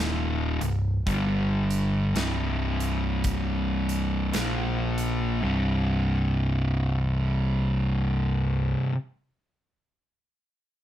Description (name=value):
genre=stoner and doom metal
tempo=55 BPM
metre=4/4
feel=swing 59% on 8ths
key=C minor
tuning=A4 = 440 Hz
part: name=fuzz guitar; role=riff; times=0.0-9.0 s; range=C2 to Bb3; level=-25 LUFS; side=equal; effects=distortion
part: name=overdriven picked electric bass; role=bass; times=0.0-8.7 s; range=C1 to Bb1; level=-29 LUFS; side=equal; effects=none
part: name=big rock drum kit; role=drums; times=0.6-5.2 s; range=hi-hat, kick drum, snare drum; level=-33 LUFS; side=right 1 dB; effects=none
room=moderate studio ambience, RT60 0.5 s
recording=none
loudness=-24 LUFS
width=side -12 dB against mid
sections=0.0-5.4 A section; 5.4-9.8 B section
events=none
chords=0.0 Cm; 1.1 G5; 2.2 C5; 4.3 Bb5; 5.4 C5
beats=| 1.06 2.15 3.24 4.33 | 5.43 6.52 7.62 8.71